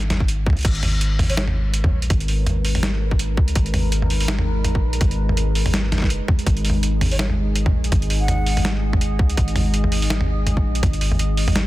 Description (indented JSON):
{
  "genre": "half-time drum and bass",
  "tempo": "165 BPM",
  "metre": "4/4",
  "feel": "swing 57% on 16ths, half-time",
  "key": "G# minor",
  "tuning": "A4 = 436 Hz",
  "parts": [
    { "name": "long sustained 808-style bass", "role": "bass", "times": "0.0-11.7 s", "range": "F#1 to C#2", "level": "-21 LUFS", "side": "equal", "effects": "none" },
    { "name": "boom bap sampler-style drum kit", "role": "drums", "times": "0.0-11.6 s", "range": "crash cymbal, hi-hat, snare drum, toms", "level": "-23 LUFS", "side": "equal", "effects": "none" },
    { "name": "electronic kick drum", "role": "drums", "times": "0.2-10.9 s", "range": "none", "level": "-20 LUFS", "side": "equal", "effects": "overdrive" },
    { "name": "deep dark ambient pad", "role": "sustained chords", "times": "1.5-11.7 s", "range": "G#3 to D#5", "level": "-28 LUFS", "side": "left 1 dB", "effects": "chorus, built-in reverb, sidechain pumping" },
    { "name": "breathy mellow silver concert flute", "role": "melody", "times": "1.3-1.4, 7.1-8.7 s", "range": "C#5 to F#5", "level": "-34 LUFS", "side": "right 2 dB", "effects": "dub echo" }
  ],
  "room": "digital ambience",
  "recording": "dense, heavily limited modern master",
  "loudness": "-17 LUFS",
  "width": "side -17 dB against mid",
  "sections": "0.0-11.7 A section",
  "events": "none",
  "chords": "0.0 G#madd9"
}